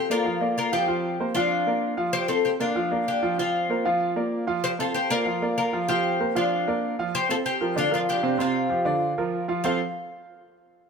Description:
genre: latin.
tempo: 192 BPM.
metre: 4/4.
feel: straight.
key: unclear.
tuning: A4 = 440 Hz.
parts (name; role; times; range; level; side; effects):
oud; melody; 0.0-9.8 s; C4 to C5; -25 LUFS; left 3 dB; none.
warm upright piano; accompaniment; 0.0-9.8 s; C3 to F5; -26 LUFS; right 3 dB; none.
room: light reverb.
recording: none.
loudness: -22 LUFS.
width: side -6 dB against mid.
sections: 0.0-7.1 A section; 7.1-9.6 B section; 9.6-10.9 C section.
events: none.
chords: 0.3 Bb; 3.4 C7sus4; 4.0 Bb; 4.6 Fsus2; 5.3 Bb; 5.9 C7sus4; 6.5 Bb; 7.1 Fsus2; 7.8 Bb; 8.4 Csus4; 9.0 Bb; 9.6 F.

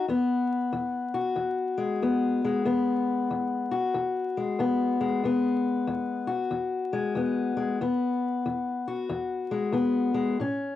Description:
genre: blues.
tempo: 93 BPM.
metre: 4/4.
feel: swing 63% on 8ths.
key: E major.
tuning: A4 = 440 Hz.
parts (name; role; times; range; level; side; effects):
fingerpicked steel-string acoustic guitar; solo; 0.0-10.8 s; E2 to F#4; -25 LUFS; left 3 dB; cassette tape.
room: wet booth ambience, RT60 0.2 s.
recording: home recording on cassette, vinyl crackle.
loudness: -25 LUFS.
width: side -12 dB against mid.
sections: 0.1-10.8 A section.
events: none.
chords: 0.1 E.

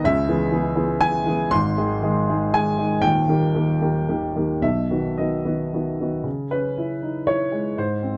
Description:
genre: neoclassical minimalist piano.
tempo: 108-122 BPM.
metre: 3/4.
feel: rubato.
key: unclear.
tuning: A4 = 441 Hz.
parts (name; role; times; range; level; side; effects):
warm baby grand piano; solo; 0.0-8.2 s; D#1 to B#5; -22 LUFS; equal; none.
room: light reverb.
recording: dark, warm production.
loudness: -22 LUFS.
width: mono.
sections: 0.0-6.2 A section; 6.2-8.2 B section.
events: none.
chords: 0.0 C#m7; 1.5 G#; 3.0 D#; 4.6 B; 6.2 C#m7.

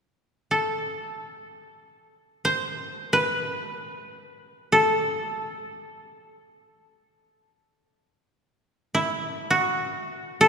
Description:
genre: japanese traditional, Japanese chamber music.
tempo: free time.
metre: none.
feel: none.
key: A kumoi.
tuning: A4 = 439 Hz.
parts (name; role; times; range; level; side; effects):
koto; solo; 0.5-10.5 s; E4 to C5; -23 LUFS; equal; none.
room: wet church reverb, RT60 3.0 s.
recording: recorded in a church or concert hall.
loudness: -24 LUFS.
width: side -6 dB against mid.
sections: 0.0-10.5 A section.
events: none.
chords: none.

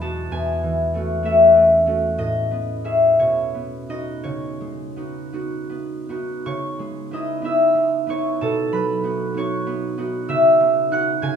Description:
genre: classical, solo harp piece.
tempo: 50-66 BPM (dotted quarters).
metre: 6/8.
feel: rubato.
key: C# minor.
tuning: A4 = 440 Hz.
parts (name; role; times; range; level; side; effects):
concert harp; solo; 0.0-11.4 s; E2 to G#6; -18 LUFS; left 1 dB; none.
room: moderate recital hall reverb, RT60 1.4 s.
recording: minimal, uncompressed stereo recording.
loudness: -17 LUFS.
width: side -7 dB against mid.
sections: 0.0-6.5 A section; 6.5-11.4 A section.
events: none.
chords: 0.3 F#m9/E; 2.2 Amaj9; 3.2 Badd9; 4.2 C#9sus4; 6.5 C#m9; 8.4 Badd9; 10.3 C#m11.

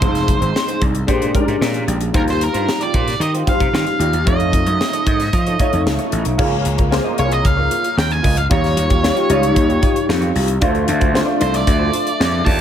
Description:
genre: polished 1980s jazz-funk pop.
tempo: 113 BPM.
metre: 4/4.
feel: straight.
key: unclear.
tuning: A4 = 440 Hz.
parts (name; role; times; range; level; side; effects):
octave-fuzz lead guitar; melody; 0.0-12.6 s; Bb4 to A5; -22 LUFS; right 2 dB; distortion.
clear concert grand piano; accompaniment; 0.0-12.6 s; G3 to D5; -20 LUFS; left 2 dB; ensemble chorus.
electric guitar through a small old amp; riff; 0.0-12.6 s; Ab3 to Eb5; -26 LUFS; right 5 dB; wide subtle chorus.
gritty slap bass; bass; 0.0-12.6 s; F1 to F3; -19 LUFS; equal; overdrive.
crisp fusion drum kit; drums; 0.0-12.6 s; crash cymbal, hi-hat, kick drum, snare drum; -20 LUFS; equal; gated reverb.
room: light reverb, studio ambience.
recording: none.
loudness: -14 LUFS.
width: side -9 dB against mid.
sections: 0.0-6.4 A section; 6.4-12.6 B section.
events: none.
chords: 0.0 Fm7; 1.1 Bb13; 2.1 Eb69; 4.3 F7b13; 6.4 Db6; 8.5 Eb9; 10.6 Dm7.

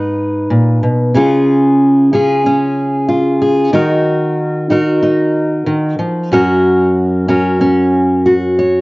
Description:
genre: folk.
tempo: 93 BPM.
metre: 4/4.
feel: straight.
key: F# major.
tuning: A4 = 437 Hz.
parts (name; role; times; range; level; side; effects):
fingerpicked steel-string acoustic guitar; solo; 0.0-8.8 s; F#2 to C#5; -10 LUFS; equal; cassette tape.
room: moderate spring reverb, RT60 1.8 s, studio ambience.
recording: home recording on cassette, nothing above 7.5 kHz.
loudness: -10 LUFS.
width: side -22 dB against mid.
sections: 0.0-8.8 A section.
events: none.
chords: 0.0 G#m; 1.1 C#; 3.7 D#m; 6.3 F#.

